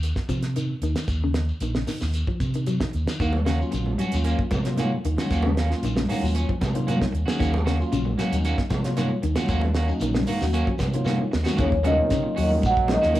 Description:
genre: afrobeat.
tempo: 114 BPM.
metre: 4/4.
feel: straight.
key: Eb dorian.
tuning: A4 = 440 Hz.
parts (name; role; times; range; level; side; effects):
fingered electric bass; bass; 0.0-13.2 s; Bb1 to Eb3; -25 LUFS; equal; none.
damped 70s drum kit; drums; 0.0-13.2 s; hi-hat, kick drum, snare drum; -28 LUFS; right 1 dB; none.
shekere; percussion; 0.0-13.2 s; none; -36 LUFS; left 2 dB; none.
clean electric guitar; arpeggios; 0.3-13.2 s; Db3 to Gb3; -30 LUFS; left 4 dB; none.
electric guitar at the edge of break-up; stabs; 3.2-13.2 s; Bb3 to Gb4; -30 LUFS; right 4 dB; none.
congas; percussion; 3.2-13.2 s; none; -30 LUFS; equal; none.
tine electric piano; accompaniment; 3.6-13.2 s; Gb3 to Db5; -30 LUFS; left 1 dB; medium stereo tremolo.
marimba with soft mallets; melody; 11.6-13.2 s; Db5 to Gb5; -22 LUFS; right 1 dB; plate reverb, tape echo.
clear trombone; second line; 11.6-13.2 s; Db3 to Gb3; -30 LUFS; right 2 dB; plate reverb.
room: light reverb.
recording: none.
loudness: -21 LUFS.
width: side -14 dB against mid.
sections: 0.0-11.6 A section; 11.6-13.2 B section.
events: drum fill 11.1-11.6.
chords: 0.0 Ebm7.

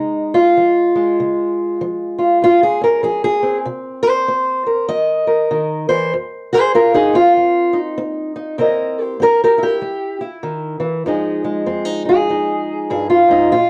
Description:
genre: acoustic country blues, solo or duo.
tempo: 97 BPM.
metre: 4/4.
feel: swing 61% on 8ths.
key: F minor.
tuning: A4 = 438 Hz.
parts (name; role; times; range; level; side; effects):
fingerpicked old ladder-braced acoustic guitar; solo; 0.0-13.7 s; F2 to D#5; -16 LUFS; equal; none.
room: moderate studio reverb, RT60 0.6 s.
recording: worn, warbling old tape, cassette tape, warbly pitch drift.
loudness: -16 LUFS.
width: mono.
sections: 0.0-11.0 A section; 11.0-13.7 B section.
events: steel-string acoustic guitar solo 0.0-11.0.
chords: 0.0 Fm7; 1.2 Db; 3.7 Cm7; 6.1 Fm7; 8.6 C7#9; 11.0 Fm7.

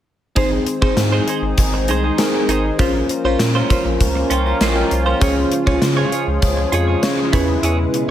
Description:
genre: 1980s-style pop.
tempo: 99 BPM.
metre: 4/4.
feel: straight.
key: Ab major.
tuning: A4 = 439 Hz.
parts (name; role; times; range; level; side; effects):
FM electric piano with soft pad layer; accompaniment; 0.4-8.1 s; C4 to C6; -20 LUFS; left 1 dB; chorus.
sweeping resonant pad; sustained chords; 0.4-8.1 s; B2 to Ab4; -25 LUFS; left 1 dB; chorus.
direct-recorded clean electric guitar; riff; 0.4-8.0 s; Db4 to Db5; -24 LUFS; right 5 dB; lush chorus, tape echo.
mellow synth brass; stabs; 0.4-8.1 s; C4 to C5; -26 LUFS; left 1 dB; chorus.
round analog bass; bass; 0.4-8.1 s; Ab1 to Db3; -20 LUFS; equal; none.
gated 80s drum kit; drums; 0.4-8.1 s; hi-hat, kick drum, snare drum; -19 LUFS; equal; none.
room: light reverb.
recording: none.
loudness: -15 LUFS.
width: side -11 dB against mid.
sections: 0.4-8.1 A section.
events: none.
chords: 0.4 Ab; 2.8 Bbmadd9; 5.2 Db; 7.3 E6.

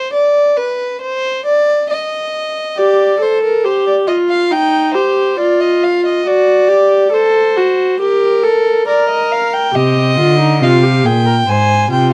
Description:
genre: classical, baroque-style fugue for string quartet.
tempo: 69 BPM.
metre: 4/4.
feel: straight.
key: unclear.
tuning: A4 = 440 Hz.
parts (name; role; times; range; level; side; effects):
warm violin; second line; 0.0-12.1 s; Bb4 to Ab5; -17 LUFS; equal; none.
warm viola; accompaniment; 2.8-12.1 s; Eb4 to C5; -16 LUFS; equal; none.
rich cello; bass; 9.7-12.1 s; Ab2 to D3; -15 LUFS; equal; none.
room: light reverb.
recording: dark, warm production.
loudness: -13 LUFS.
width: mono.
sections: 0.0-12.1 A section.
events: none.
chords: 0.0 N.C.; 2.8 G5; 4.5 Eb; 6.3 D/F#; 8.0 Gm; 9.7 Cm; 11.5 Ab.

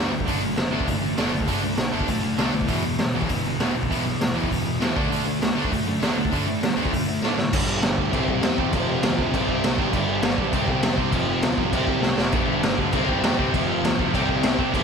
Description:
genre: punk rock.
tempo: 199 BPM.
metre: 4/4.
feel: straight.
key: unclear.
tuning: A4 = 437 Hz.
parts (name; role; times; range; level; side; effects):
distorted electric guitar; riff; 0.0-7.4, 12.3-14.8 s; E2 to D4; -30 LUFS; left 1 dB; distortion, slapback echo.
overdriven semi-hollow guitar; riff; 0.0-14.8 s; E2 to D4; -26 LUFS; right 10 dB; none.
sludgy distorted guitar; riff; 0.0-14.8 s; E2 to D4; -27 LUFS; left 11 dB; overdrive, slapback echo.
fuzz picked electric bass; bass; 0.0-14.8 s; E1 to A2; -31 LUFS; equal; overdrive.
raw garage drum kit; drums; 0.2-14.8 s; crash cymbal, hi-hat, kick drum, snare drum; -24 LUFS; equal; none.
room: moderate lush hall reverb, RT60 1.7 s, studio reverb.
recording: big arena sound.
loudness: -20 LUFS.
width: side -6 dB against mid.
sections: 0.0-7.5 A section; 7.5-14.8 B section.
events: drum fill 7.2-7.5, 12.0-12.3.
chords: 0.3 D/F#; 2.7 E5; 5.0 D5; 7.5 G5; 8.1 C; 8.7 F5; 9.3 C5; 9.9 G; 10.5 C5; 11.1 F5; 11.7 C5; 12.3 G5; 12.9 C5; 13.5 F5; 14.1 C5.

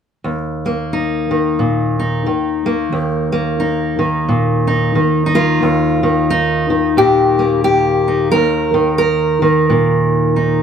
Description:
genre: folk, solo fingerstyle acoustic guitar.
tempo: 89 BPM.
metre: 4/4.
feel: swing 58% on 8ths.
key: Eb major.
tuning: A4 = 438 Hz.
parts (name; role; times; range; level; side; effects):
fingerpicked steel-string acoustic guitar; solo; 0.2-10.6 s; Eb2 to Bb4; -13 LUFS; equal; none.
room: light reverb.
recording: none.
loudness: -13 LUFS.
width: side -7 dB against mid.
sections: 0.2-5.6 A section; 5.6-10.6 B section.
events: none.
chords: 0.2 Eb5.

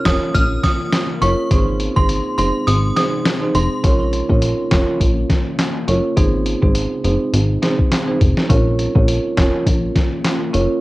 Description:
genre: dancehall.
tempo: 103 BPM.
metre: 4/4.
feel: swing 56% on 16ths.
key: Bb minor.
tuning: A4 = 436 Hz.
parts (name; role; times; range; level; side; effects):
marimba with medium mallets; accompaniment; 0.0-10.7 s; C4 to Db5; -21 LUFS; right 2 dB; none.
deep dark ambient pad; sustained chords; 0.0-10.8 s; C3 to F4; -28 LUFS; equal; chorus, built-in reverb, sidechain pumping.
synth chime; melody; 0.1-3.7 s; C6 to F6; -22 LUFS; right 1 dB; ensemble chorus, cassette tape, tape echo.
plucky analog bass; bass; 0.1-10.7 s; F1 to Bb1; -18 LUFS; equal; transformer saturation.
lo-fi sampler-style drum kit; drums; 0.1-10.7 s; handclaps, hi-hat, kick drum, snare drum; -18 LUFS; equal; cassette tape.
room: little or no reverb.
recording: home recording on cassette.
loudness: -14 LUFS.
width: side -19 dB against mid.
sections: 0.0-3.8 A section; 3.8-10.8 B section.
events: kick muted 2.7-3.8.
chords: 0.0 Bbm; 1.5 Ab; 3.8 Bbm; 6.2 Ab; 8.5 Bbm.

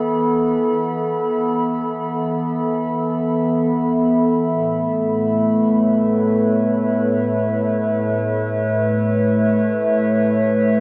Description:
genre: ambient.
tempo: free time.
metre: none.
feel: none.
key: unclear.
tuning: A4 = 435 Hz.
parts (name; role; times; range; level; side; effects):
warbly tape-like pad; sustained chords; 0.0-10.8 s; A2 to B5; -19 LUFS; equal; chorus, built-in reverb.
room: wet cathedral reverb, RT60 6.1 s.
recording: cassette tape.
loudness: -19 LUFS.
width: mono.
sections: 0.0-10.8 A section.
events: none.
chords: 0.0 Esus4; 4.5 Aadd9.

